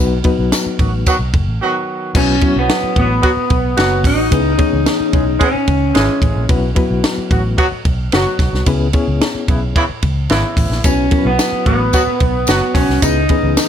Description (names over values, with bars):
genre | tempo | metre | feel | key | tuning
uptempo 1960s-style soul | 110 BPM | 4/4 | straight | B mixolydian | A4 = 442 Hz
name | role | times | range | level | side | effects
reed electric piano | accompaniment | 0.0-13.7 s | E3 to C#5 | -20 LUFS | left 4 dB | fast tremolo
vintage muted fingered electric bass | bass | 0.0-13.6 s | F#1 to C#2 | -18 LUFS | equal | none
compact cocktail drum kit | drums | 0.2-13.7 s | crash cymbal, hi-hat, kick drum, ride cymbal, snare drum | -17 LUFS | equal | none
tambourine | percussion | 0.5-1.2, 10.8-13.7 s | none | -25 LUFS | left 4 dB | none
mellow horn section | second line | 0.8-13.0 s | C#3 to G#4 | -19 LUFS | right 1 dB | none
electric guitar through a small old amp | melody | 2.2-6.2, 10.9-13.7 s | B3 to D#4 | -16 LUFS | equal | tape echo
room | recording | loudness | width
light reverb | none | -12 LUFS | side -9 dB against mid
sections
0.0-2.1 A section; 2.1-13.7 A section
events
break 1.6-2.1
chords
0.0 B; 2.1 Bsus4; 4.3 C#m7; 6.5 Bsus4; 8.7 C#m7; 10.8 Bsus4; 13.0 C#m7